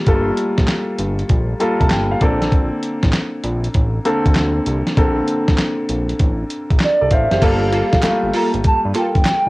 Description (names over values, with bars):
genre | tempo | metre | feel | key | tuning
R&B, new jack swing | 98 BPM | 4/4 | swing 66% on 16ths | G minor | A4 = 442 Hz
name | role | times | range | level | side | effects
clear baby grand piano | accompaniment | 0.0-9.5 s | D3 to Bb5 | -20 LUFS | left 1 dB | cassette tape
fat analog bass | bass | 0.1-9.5 s | F#1 to G2 | -21 LUFS | equal | transformer saturation
dusty soul sampler-style drum kit | drums | 0.1-9.4 s | crash cymbal, handclaps, hi-hat, kick drum, snare drum | -17 LUFS | equal | cassette tape
hollow clarinet-like synth lead | melody | 6.8-9.5 s | D5 to Bb5 | -18 LUFS | right 2 dB | chorus, cassette tape
funky polysynth comp | stabs | 7.4-9.2 s | Bb3 to A4 | -21 LUFS | right 1 dB | chorus, cassette tape
group handclap | percussion | 8.0-9.4 s | none | -33 LUFS | right 5 dB | none
room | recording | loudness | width
moderate studio reverb, RT60 0.5 s | home recording on cassette | -15 LUFS | side -21 dB against mid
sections
0.0-7.4 A section; 7.4-9.5 B section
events
grand piano fill 1.3-2.5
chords
0.0 Gm9; 2.2 Bbmaj9; 7.4 Gm9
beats
| 0.07 0.69 1.30 1.91 | 2.52 3.14 3.75 4.36 | 4.97 5.58 6.20 6.81 | 7.42 8.03 8.65 9.26